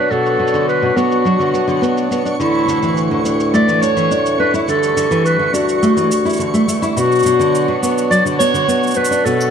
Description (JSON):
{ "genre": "folktronica", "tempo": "105 BPM", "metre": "4/4", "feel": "straight", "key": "D major", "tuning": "A4 = 440 Hz", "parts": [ { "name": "mellow clarinet", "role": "melody", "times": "0.0-9.5 s", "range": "E4 to D5", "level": "-16 LUFS", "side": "left 1 dB", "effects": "digital delay" }, { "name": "pedal harmonium", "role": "sustained chords", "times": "0.0-9.5 s", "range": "D2 to D4", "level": "-21 LUFS", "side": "right 1 dB", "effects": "stereo widening" }, { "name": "nylon-string guitar", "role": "arpeggios", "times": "0.0-9.5 s", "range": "B2 to E4", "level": "-17 LUFS", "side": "equal", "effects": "low-pass filter, digital delay" }, { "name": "flickering grainy texture", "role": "texture", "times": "0.0-9.5 s", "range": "C#6", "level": "-26 LUFS", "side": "left 1 dB", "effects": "built-in reverb" }, { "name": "shaker", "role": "drums", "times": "0.1-9.5 s", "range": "none", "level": "-29 LUFS", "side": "right 4 dB", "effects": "low-pass filter on hats, low-pass filter on snare, low-pass filter on perc, low-pass filter on room" } ], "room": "moderate echo chamber reverb, RT60 2.0 s", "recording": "none", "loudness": "-13 LUFS", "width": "side -7 dB against mid", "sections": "0.0-9.5 A section", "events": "none", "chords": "0.0 Bm; 2.4 Dsus2; 7.0 Bm", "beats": "| 0.11 0.68 1.25 1.82 | 2.40 2.97 3.54 4.11 | 4.68 5.25 5.83 6.40 | 6.97 7.54 8.11 8.68 | 9.25" }